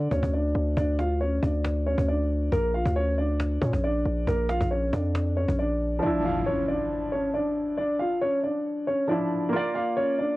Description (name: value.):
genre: hip hop, trap.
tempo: 137 BPM.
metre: 4/4.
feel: half-time.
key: D harmonic minor.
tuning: A4 = 441 Hz.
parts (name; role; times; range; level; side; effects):
dark concert grand piano; melody; 0.0-10.4 s; Bb3 to F5; -26 LUFS; equal; low-pass filter, cassette tape.
distorted 808-style bass; bass; 0.0-6.0 s; Bb1 to Bb2; -26 LUFS; equal; distortion.
cajon; drums; 0.0-6.0 s; none; -32 LUFS; equal; cassette tape.
felt-muted upright piano; accompaniment; 6.0-10.4 s; F3 to D5; -30 LUFS; right 1 dB; low-pass filter, cassette tape.
impact; sound effects; 6.0-7.8 s; none; -35 LUFS; equal; none.
room: light reverb.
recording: home recording on cassette.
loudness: -24 LUFS.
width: side -18 dB against mid.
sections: 0.0-6.0 A section; 6.0-10.4 B section.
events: impact 6.0-7.8.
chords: 0.0 N.C.; 2.5 Bb; 6.0 Dmadd9; 9.5 Bb.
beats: 0.33 | 0.77 1.21 1.65 2.08 | 2.52 2.96 3.40 3.83 | 4.27 4.71 5.15 5.59 | 6.03 6.46 6.90 7.34 | 7.78 8.21 8.65 9.09 | 9.53 9.97.